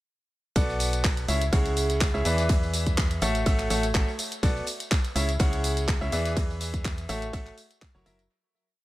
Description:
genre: piano house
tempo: 124 BPM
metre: 4/4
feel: swing 54% on 16ths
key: B dorian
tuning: A4 = 440 Hz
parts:
  - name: bright grand piano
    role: riff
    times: 0.6-8.2 s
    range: C#3 to F#5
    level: -29 LUFS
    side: equal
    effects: sidechain pumping, dub echo
  - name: organ-like FM bass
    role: bass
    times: 0.6-8.3 s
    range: F#1 to E2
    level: -29 LUFS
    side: equal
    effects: sidechain pumping
  - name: electronic kick drum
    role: drums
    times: 0.6-7.9 s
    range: none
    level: -25 LUFS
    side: equal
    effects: none
  - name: house drum kit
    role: drums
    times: 0.6-8.3 s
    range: handclaps, hi-hat, ride cymbal, tambourine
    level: -32 LUFS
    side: equal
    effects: dub echo
  - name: huge arena drum kit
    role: drums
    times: 0.6-8.2 s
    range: hi-hat, snare drum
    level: -43 LUFS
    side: left 3 dB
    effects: none
room: light reverb, studio reverb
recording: echo-heavy mix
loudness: -23 LUFS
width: side -16 dB against mid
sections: 0.6-8.3 drop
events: drop 0.6-8.3; fade-out 5.7-8.3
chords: 0.6 Bm7; 1.3 C#m; 2.5 E7; 3.2 A6; 4.4 Bm7; 5.2 C#m; 6.4 E7; 7.1 A6; 7.8 F#7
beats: | 0.56 1.04 1.53 2.01 | 2.49 2.98 3.46 3.95 | 4.43 4.91 5.40 5.88 | 6.37 6.85 7.33 7.82

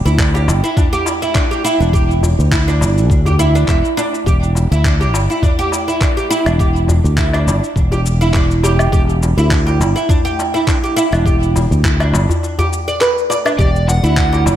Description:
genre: organic downtempo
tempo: 103 BPM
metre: 4/4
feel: swing 54% on 16ths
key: E minor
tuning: A4 = 440 Hz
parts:
  - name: oud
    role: arpeggios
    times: 0.1-14.5 s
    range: D4 to E5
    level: -17 LUFS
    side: right 1 dB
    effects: diffuse ambient delay
  - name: sustaining fretless electric bass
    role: bass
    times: 0.1-14.6 s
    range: E1 to D2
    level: -14 LUFS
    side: equal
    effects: sidechain pumping
  - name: electronic cabasa, handclaps and woodblock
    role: drums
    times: 0.1-14.6 s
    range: none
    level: -23 LUFS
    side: left 1 dB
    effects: studio reverb
  - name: electronic kick drum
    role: drums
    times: 0.2-14.3 s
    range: none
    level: -16 LUFS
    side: equal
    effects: studio reverb
  - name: darbuka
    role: percussion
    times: 0.3-14.6 s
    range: none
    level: -22 LUFS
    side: left 1 dB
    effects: none
  - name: overdriven slide guitar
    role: melody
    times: 13.6-14.4 s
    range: D5 to F#5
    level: -20 LUFS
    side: equal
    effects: diffuse ambient delay
room: light reverb, digital ambience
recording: none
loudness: -12 LUFS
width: side -11 dB against mid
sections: 0.0-14.6 A section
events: break 12.4-13.6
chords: 0.0 Em7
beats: 0.19 0.77 1.35 | 1.94 2.52 3.10 3.68 | 4.27 4.85 5.43 6.01 | 6.60 7.18 7.76 8.34 | 8.93 9.51 10.09 10.67 | 11.26 11.84 12.42 13.00 | 13.59 14.17

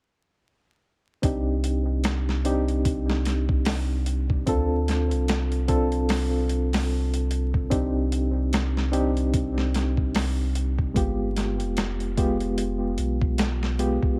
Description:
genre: trip hop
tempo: 74 BPM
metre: 4/4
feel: swing 57% on 16ths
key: C harmonic minor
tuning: A4 = 440 Hz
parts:
  - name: mellow reed electric piano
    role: accompaniment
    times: 1.2-14.2 s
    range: Ab3 to A4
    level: -29 LUFS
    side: equal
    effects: tremolo, vintage 12-bit sampler grit, tape echo
  - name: warm sub bass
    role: bass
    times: 1.2-14.0 s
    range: F1 to D2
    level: -28 LUFS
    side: equal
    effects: none
  - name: boom bap sampler-style drum kit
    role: drums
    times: 1.2-14.2 s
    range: hi-hat, kick drum, snare drum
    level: -29 LUFS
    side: equal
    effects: none
room: light reverb, digital ambience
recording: echo-heavy mix, vinyl crackle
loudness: -25 LUFS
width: mono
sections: 1.2-14.2 A section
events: none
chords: 1.2 Cmadd9; 4.5 Dm7; 7.7 Cmadd9; 11.0 G7b9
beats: | 1.23 2.04 2.85 3.66 | 4.47 5.28 6.09 6.91 | 7.72 8.53 9.34 10.15 | 10.96 11.77 12.58 13.39

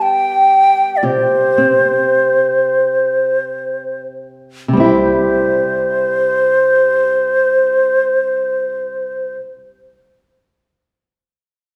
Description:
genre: celtic folk, Celtic slow air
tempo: 27-40 BPM (dotted quarters)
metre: 6/8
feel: rubato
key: C major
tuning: A4 = 440 Hz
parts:
  - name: bansuri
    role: melody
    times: 0.0-9.4 s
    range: C5 to G5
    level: -15 LUFS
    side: equal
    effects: none
  - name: fingerpicked old ladder-braced acoustic guitar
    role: accompaniment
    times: 0.0-9.5 s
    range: C3 to A4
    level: -21 LUFS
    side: equal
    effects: none
room: wet recital hall reverb, RT60 1.5 s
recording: recorded in a church or concert hall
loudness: -14 LUFS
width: mono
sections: 0.0-4.7 A section; 4.7-9.0 B section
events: slowing down 0.0-4.7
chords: 0.0 Gadd9; 1.0 C5; 4.7 C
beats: | 1.02 2.72 | 4.73 6.87

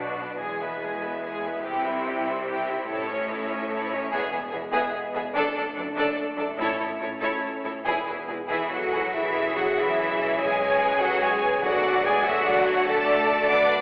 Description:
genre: cinematic, heroic adventure film score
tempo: 96 BPM (dotted quarters)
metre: 6/8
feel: straight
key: unclear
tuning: A4 = 440 Hz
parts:
  - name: rich symphonic violin section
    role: melody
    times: 0.0-13.7 s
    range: B4 to D6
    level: -29 LUFS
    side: equal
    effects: none
  - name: rich symphonic violin section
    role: second line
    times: 0.0-13.7 s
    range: D4 to D5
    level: -28 LUFS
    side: equal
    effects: none
  - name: rich symphonic viola section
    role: accompaniment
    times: 0.0-13.8 s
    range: G#3 to E5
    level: -30 LUFS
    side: equal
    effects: none
  - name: warm French horn section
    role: sustained chords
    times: 0.0-13.8 s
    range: F#3 to G#4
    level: -33 LUFS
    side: equal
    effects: none
  - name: bright symphonic cello section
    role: bass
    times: 0.0-13.7 s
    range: E2 to D4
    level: -31 LUFS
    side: equal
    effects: none
  - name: rich symphonic double bass section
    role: bass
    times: 0.0-13.8 s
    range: E1 to C2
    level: -41 LUFS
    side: equal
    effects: none
  - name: mellow clarinet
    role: second line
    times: 8.5-13.7 s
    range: E4 to D5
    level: -29 LUFS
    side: equal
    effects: none
  - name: mellow large flute ensemble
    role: second line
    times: 8.5-13.7 s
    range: G#4 to F#5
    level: -30 LUFS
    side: equal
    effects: none
  - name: dark trombone section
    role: sustained chords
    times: 9.1-13.8 s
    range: D3 to A3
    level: -36 LUFS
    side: equal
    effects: none
  - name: timpani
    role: percussion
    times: 11.6-12.2 s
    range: B2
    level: -40 LUFS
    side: equal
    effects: none
room: wet scoring stage reverb, RT60 1.6 s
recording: heard from further back in the room, telephone sound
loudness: -22 LUFS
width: side -38 dB against mid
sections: 0.0-9.1 A section; 9.1-13.8 B section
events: build-up 0.0-9.1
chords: 0.4 E; 1.6 C; 2.9 A; 4.1 E; 5.3 D/F#; 6.6 A; 7.9 E; 9.1 C#m/B; 11.6 Bm7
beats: | 0.40 1.02 | 1.65 2.27 | 2.89 3.50 | 4.12 4.73 | 5.35 5.96 | 6.58 7.21 | 7.85 8.50 | 9.13 9.76 | 10.39 11.01 | 11.63 12.25 | 12.87 13.48

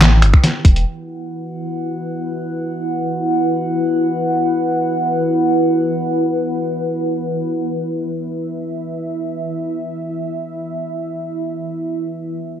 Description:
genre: deep dubstep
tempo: free time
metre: none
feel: none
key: E minor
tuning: A4 = 439 Hz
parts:
  - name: dark analog pad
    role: sustained chords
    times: 0.0-12.6 s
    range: E4 to G5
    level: -19 LUFS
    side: equal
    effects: chorus, phaser
  - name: soft dub sub bass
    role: bass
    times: 0.0-0.8 s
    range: E1 to A1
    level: -12 LUFS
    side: equal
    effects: none
  - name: trip hop sampler-style drum kit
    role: drums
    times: 0.0-0.8 s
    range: finger snaps, handclaps, hi-hat, snare drum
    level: -14 LUFS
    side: equal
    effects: none
  - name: electronic kick drum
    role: drums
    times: 0.3-0.7 s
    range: none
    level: -10 LUFS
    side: equal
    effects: none
room: light reverb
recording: none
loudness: -17 LUFS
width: side -10 dB against mid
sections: 0.9-12.6 A section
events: none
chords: 0.0 E5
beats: free time

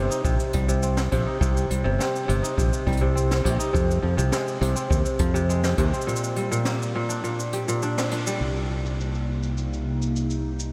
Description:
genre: folktronica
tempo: 103 BPM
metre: 4/4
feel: straight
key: C minor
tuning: A4 = 440 Hz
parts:
  - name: kora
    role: arpeggios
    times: 0.0-9.8 s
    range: Bb2 to G4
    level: -29 LUFS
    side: equal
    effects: tape echo
  - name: modern bright fingered electric bass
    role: bass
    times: 0.0-10.7 s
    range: G1 to F2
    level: -27 LUFS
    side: equal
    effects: none
  - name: jazz brush drum kit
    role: drums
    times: 0.1-10.7 s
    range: cabasa, hi-hat, snare drum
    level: -35 LUFS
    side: equal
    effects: low-pass filter on hats, low-pass filter on snare, low-pass filter on perc, low-pass filter on room
  - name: kick drum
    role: drums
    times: 0.2-5.9 s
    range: none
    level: -28 LUFS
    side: equal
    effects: none
  - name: warbly tape-like pad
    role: sustained chords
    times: 9.0-10.7 s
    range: C3 to Eb4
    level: -32 LUFS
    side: equal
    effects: chorus, built-in reverb, phaser, vintage 12-bit sampler grit
room: moderate huge ambient reverb, RT60 7.2 s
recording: dreamy mix soaked in reverb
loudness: -24 LUFS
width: mono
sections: 0.0-8.4 A section; 8.4-10.7 B section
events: break 6.1-8.4; band accent 8.0; filter sweep on drum 8.4-10.7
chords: 0.0 Cm; 3.7 Fm7; 6.1 Gm; 8.4 Cm7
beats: 0.25 0.83 | 1.42 2.00 2.58 3.16 | 3.75 4.33 4.91 5.49 | 6.08 6.66 7.24 7.82 | 8.41 8.99 9.57 10.15

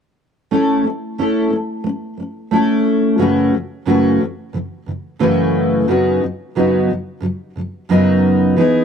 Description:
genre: pop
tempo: 90 BPM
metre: 4/4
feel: swing 60% on 16ths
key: unclear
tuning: A4 = 442 Hz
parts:
  - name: fingerpicked steel-string acoustic guitar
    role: accompaniment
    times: 0.5-8.8 s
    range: F#2 to A4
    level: -14 LUFS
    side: equal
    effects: double-tracked left and right
room: small room reverb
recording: dry, close 1970s-style studio recording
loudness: -14 LUFS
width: side -7 dB against mid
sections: 0.5-8.8 A section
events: none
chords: 0.5 A; 3.2 F#m7; 5.9 Badd9/F#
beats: | 0.52 1.19 1.86 2.53 | 3.20 3.87 4.54 5.21 | 5.88 6.55 7.22 7.89 | 8.56

